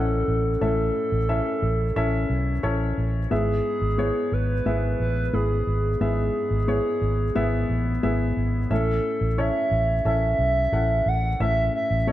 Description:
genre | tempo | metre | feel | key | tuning
piano-driven pop | 89 BPM | 4/4 | straight | unclear | A4 = 443 Hz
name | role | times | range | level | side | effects
hollow clarinet-like synth lead | melody | 0.0-12.1 s | G#4 to F#5 | -26 LUFS | right 1 dB | chorus
dark upright piano | accompaniment | 0.0-12.1 s | G#2 to F#5 | -27 LUFS | left 3 dB | none
vintage muted fingered electric bass | bass | 0.0-12.1 s | G#1 to B1 | -24 LUFS | equal | none
room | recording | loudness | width
light reverb | none | -21 LUFS | side -13 dB against mid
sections
0.0-12.1 A section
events
none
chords
0.0 A; 3.3 E/G#; 8.7 A

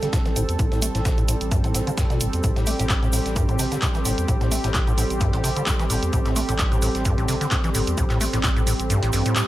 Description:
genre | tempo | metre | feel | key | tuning
acid house | 130 BPM | 4/4 | swing 55% on 16ths | unclear | A4 = 439 Hz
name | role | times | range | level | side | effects
warm analog pad | sustained chords | 0.0-9.5 s | G3 to A4 | -29 LUFS | equal | chorus, sidechain pumping
acid bass, square | riff | 0.0-9.4 s | G2 to A3 | -25 LUFS | equal | overdrive, lush chorus, tape echo
dusty soul sampler-style drum kit | drums | 0.0-9.5 s | hi-hat, shaker, snare drum | -37 LUFS | equal | none
punchy analog drum machine | drums | 0.0-9.5 s | handclaps, hi-hat | -28 LUFS | right 1 dB | small room ambience
egg shaker | percussion | 0.0-9.5 s | none | -34 LUFS | right 1 dB | none
warbly tape-like pad | texture | 0.0-9.5 s | C4 to C6 | -30 LUFS | right 2 dB | chorus, built-in reverb, sidechain pumping
electronic kick drum | drums | 0.1-8.5 s | none | -24 LUFS | equal | small room ambience
saturated sub bass | bass | 0.4-9.2 s | G1 to E2 | -28 LUFS | equal | sidechain pumping
room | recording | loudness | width
light reverb | none | -19 LUFS | side -15 dB against mid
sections
0.0-9.5 A section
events
filter sweep on acid bass 0.0-9.5; kick drops out 8.9-9.5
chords
0.0 Am7

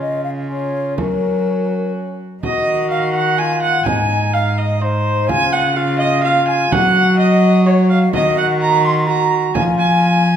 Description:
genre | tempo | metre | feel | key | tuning
classical, renaissance-style consort dance | 126 BPM | 3/4 | straight | unclear | A4 = 441 Hz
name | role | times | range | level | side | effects
mellow hollow concert flute | melody | 0.0-10.2 s | Bb4 to C6 | -21 LUFS | left 5 dB | none
rich viola | second line | 0.0-10.4 s | F4 to C6 | -19 LUFS | right 5 dB | none
mellow bassoon | accompaniment | 0.0-10.3 s | Db4 to Gb4 | -21 LUFS | left 2 dB | none
rich cello | bass | 0.0-10.4 s | Ab2 to Gb3 | -18 LUFS | right 1 dB | none
frame drum | percussion | 1.0-9.8 s | none | -24 LUFS | right 4 dB | none
room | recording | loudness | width
wet recital hall reverb, RT60 1.5 s | none | -13 LUFS | side -9 dB against mid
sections
0.0-2.4 A section; 2.4-10.4 A section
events
none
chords
0.0 Db; 1.0 Gb; 2.4 Ebm; 3.9 Ab; 5.3 Db; 6.7 Ebm9/Gb; 8.1 Ebm; 9.6 Fm

